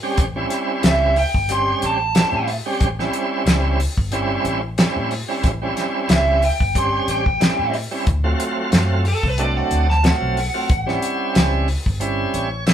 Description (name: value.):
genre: straight-eighth soul blues.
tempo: 91 BPM.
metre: 4/4.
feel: swing 55% on 16ths.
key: unclear.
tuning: A4 = 444 Hz.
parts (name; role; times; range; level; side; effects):
bright tonewheel organ; accompaniment; 0.0-12.7 s; E#3 to E5; -22 LUFS; right 2 dB; slow rotary speaker, overdrive.
vintage muted fingered electric bass; bass; 0.2-12.7 s; G1 to A2; -22 LUFS; equal; none.
warm soul drum kit; drums; 0.2-12.7 s; hi-hat, kick drum, snare drum; -20 LUFS; equal; none.
lead guitar through a small cranked amp; melody; 0.9-11.3 s; A4 to B#5; -20 LUFS; right 1 dB; overdrive.
room: moderate studio reverb, RT60 0.6 s.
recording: band playing live in one room.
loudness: -17 LUFS.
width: side -10 dB against mid.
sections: 0.0-12.7 A section.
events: lead electric guitar solo 0.0-12.7; tonewheel organ fill 12.0-12.7.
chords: 0.0 A7#9; 8.1 D7#9; 10.7 A7#9.